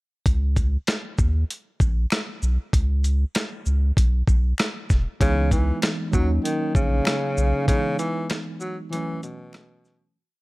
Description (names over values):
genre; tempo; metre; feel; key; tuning
hip hop, boom-bap hip-hop; 97 BPM; 4/4; swing 61% on 16ths; unclear; A4 = 440 Hz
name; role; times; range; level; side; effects
warm sub bass; bass; 0.3-7.5 s; E1 to D#2; -21 LUFS; equal; none
dusty soul sampler-style drum kit; drums; 0.3-10.0 s; hi-hat, kick drum, rim click, shaker, snare drum; -22 LUFS; equal; none
finger snap; percussion; 0.9-9.7 s; none; -39 LUFS; left 4 dB; none
breathy tenor saxophone; melody; 5.2-10.1 s; B2 to F#3; -26 LUFS; equal; slapback echo
tine electric piano; accompaniment; 5.2-10.2 s; E3 to D#4; -28 LUFS; right 1 dB; overdrive, fast stereo tremolo
room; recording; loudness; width
little or no reverb; none; -20 LUFS; side -22 dB against mid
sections
0.3-10.2 hook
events
break 7.7-10.2; fade-out 7.7-10.2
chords
0.3 N.C.; 1.2 D#5; 2.7 N.C.; 4.0 Bsus4; 5.2 C#m7; 6.1 D#m7; 7.7 C#m9; 8.9 B7sus4